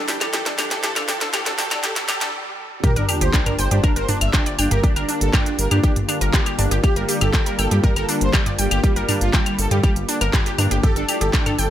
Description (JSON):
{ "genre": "melodic techno", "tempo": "120 BPM", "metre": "4/4", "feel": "straight", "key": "G dorian", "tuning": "A4 = 443 Hz", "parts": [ { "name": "soft supersaw", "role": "melody", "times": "0.0-11.7 s", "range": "G3 to E5", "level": "-26 LUFS", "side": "right 1 dB", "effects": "sidechain pumping, digital delay" }, { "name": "sweeping resonant pad", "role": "sustained chords", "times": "0.0-11.7 s", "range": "G2 to F4", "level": "-29 LUFS", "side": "left 2 dB", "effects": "chorus, sidechain pumping" }, { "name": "wide unison pluck", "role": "arpeggios", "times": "0.0-11.7 s", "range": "D4 to G5", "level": "-26 LUFS", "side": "equal", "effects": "sidechain pumping, dub echo" }, { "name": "riser and sub drop", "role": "sound effects", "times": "0.0-4.8 s", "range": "none", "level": "-30 LUFS", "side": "equal", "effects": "none" }, { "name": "house drum kit", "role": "drums", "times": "0.1-11.7 s", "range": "claves, handclaps, hi-hat, snare drum, toms", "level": "-23 LUFS", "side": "equal", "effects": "high-pass filter on snare, small room ambience, high-pass filter on hats, high-pass filter on toms, high-pass filter on perc" }, { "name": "electronic kick drum", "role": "drums", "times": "2.8-11.4 s", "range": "none", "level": "-19 LUFS", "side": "equal", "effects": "small room ambience" }, { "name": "round analog bass", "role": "bass", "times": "3.0-11.7 s", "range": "G1 to G2", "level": "-21 LUFS", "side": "equal", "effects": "sidechain pumping" } ], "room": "light reverb, digital ambience", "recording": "high-pass filter", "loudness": "-17 LUFS", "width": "side -11 dB against mid", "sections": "0.0-2.8 A section; 2.8-11.7 B section", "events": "build-up 0.0-2.8; drum fill 0.0-2.3; riser 0.0-2.3; filter sweep on analog synth pad 0.0-2.8; stop 2.3-2.8; drop 2.8-11.7; impact 2.8-4.8", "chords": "0.0 Dmadd9/G; 2.8 Gm7; 10.8 Dmadd9/G", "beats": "0.34 | 0.84 1.34 1.84 2.34 | 2.84 3.34 3.84 4.34 | 4.84 5.34 5.84 6.34 | 6.84 7.34 7.84 8.34 | 8.84 9.34 9.84 10.34 | 10.84 11.34" }